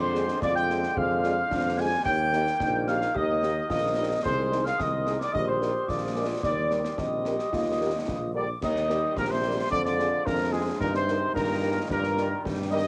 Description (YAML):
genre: military-style march for wind band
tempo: 110 BPM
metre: 2/4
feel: straight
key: Eb major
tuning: A4 = 440 Hz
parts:
  - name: mellow trumpet section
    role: melody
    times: 0.0-12.9 s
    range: Ab4 to Ab5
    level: -30 LUFS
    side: equal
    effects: none
  - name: clear euphonium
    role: second line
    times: 0.0-12.8 s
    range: Ab2 to Ab4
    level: -38 LUFS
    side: equal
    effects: none
  - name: glockenspiel with rubber mallets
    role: second line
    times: 0.0-8.3 s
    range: C6 to Ab6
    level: -40 LUFS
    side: equal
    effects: none
  - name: warm woodwind section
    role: second line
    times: 0.0-12.9 s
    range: D4 to Ab5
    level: -40 LUFS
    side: equal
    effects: none
  - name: wooden piccolo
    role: second line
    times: 0.0-12.9 s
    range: Ab5 to Ab6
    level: -40 LUFS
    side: equal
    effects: none
  - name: clear trombone section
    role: sustained chords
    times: 0.0-12.9 s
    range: D3 to Bb3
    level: -40 LUFS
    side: equal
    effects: none
  - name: warm tuba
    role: bass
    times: 0.0-12.9 s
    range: Bb1 to G2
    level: -33 LUFS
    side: equal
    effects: none
  - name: mellow French horn section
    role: accompaniment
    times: 0.1-12.8 s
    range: G3 to Bb4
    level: -36 LUFS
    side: equal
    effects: none
  - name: concert snare drum, concert bass drum and clash cymbals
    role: drums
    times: 0.2-12.9 s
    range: none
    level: -38 LUFS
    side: equal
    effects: vintage 12-bit sampler grit, cassette tape
room: light reverb, small room reverb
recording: home recording on cassette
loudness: -27 LUFS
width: mono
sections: 0.0-8.6 A section; 8.6-12.9 B section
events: none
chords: 0.0 Ddim/F; 2.1 Eb; 4.2 Ab/C; 5.3 Eb/Bb; 5.9 Bb7; 6.4 Eb; 9.7 Ddim/F; 10.8 Eb/G